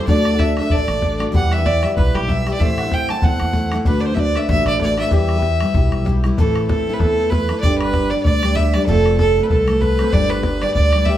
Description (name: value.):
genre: celtic folk, Celtic reel.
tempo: 191 BPM.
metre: 4/4.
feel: swing 57% on 8ths.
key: E minor, A minor from 6.4 s.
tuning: A4 = 440 Hz.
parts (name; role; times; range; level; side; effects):
clear fiddle; melody; 0.0-11.2 s; G4 to A5; -20 LUFS; right 2 dB; slapback echo.
concert harp; second line; 0.0-11.2 s; G4 to A5; -26 LUFS; equal; none.
picked steel-string acoustic guitar; accompaniment; 0.0-11.2 s; A2 to C5; -22 LUFS; left 1 dB; none.
upright bass; bass; 0.1-11.2 s; F1 to E2; -20 LUFS; equal; none.
bodhran; percussion; 0.1-11.1 s; none; -20 LUFS; left 1 dB; none.
room: wet studio reverb, RT60 0.6 s.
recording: heard from further back in the room.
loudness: -15 LUFS.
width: side -12 dB against mid.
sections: 0.0-6.4 A section; 6.4-11.2 B section.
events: none.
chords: 0.1 D; 1.3 Em; 2.6 Am; 3.9 D6; 5.1 Em; 6.4 Amadd9; 7.6 G; 8.9 F; 10.1 G.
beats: | 0.07 0.39 0.70 1.02 | 1.34 1.65 1.97 2.28 | 2.60 2.92 3.23 3.54 | 3.86 4.17 4.49 4.80 | 5.12 5.43 5.75 6.06 | 6.38 6.69 7.00 7.32 | 7.63 7.95 8.26 8.57 | 8.88 9.20 9.51 9.82 | 10.14 10.45 10.76 11.07.